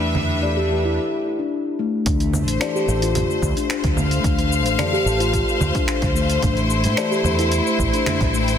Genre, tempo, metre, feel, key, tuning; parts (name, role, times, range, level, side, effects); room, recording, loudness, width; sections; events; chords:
organic downtempo; 110 BPM; 4/4; straight; D dorian; A4 = 439 Hz
clear symphonic string section; sustained chords; 0.0-8.6 s; G3 to G5; -23 LUFS; left 2 dB; sidechain pumping
fretless electric bass; bass; 0.0-8.5 s; A1 to A2; -22 LUFS; right 1 dB
dusty soul sampler-style drum kit; drums; 0.1-8.6 s; congas, finger snaps, hi-hat, shaker; -26 LUFS; right 3 dB; overdrive, soft clipping on snare
felt-muted upright piano; accompaniment; 0.4-7.5 s; E3 to C5; -30 LUFS; left 4 dB; sidechain pumping, tape echo
steel tongue drum; arpeggios; 0.4-8.4 s; A3 to D5; -23 LUFS; left 3 dB; tape echo
electronic kick drum; drums; 2.1-8.3 s; -24 LUFS; right 1 dB; overdrive
light reverb, small room ambience; dense, heavily limited modern master; -18 LUFS; side -8 dB against mid
0.0-2.1 A section; 2.1-8.6 B section
filter sweep on steel tongue drum 0.0-2.1; break 1.0-2.1
0.0 Em7; 2.1 Dm7; 6.4 Am7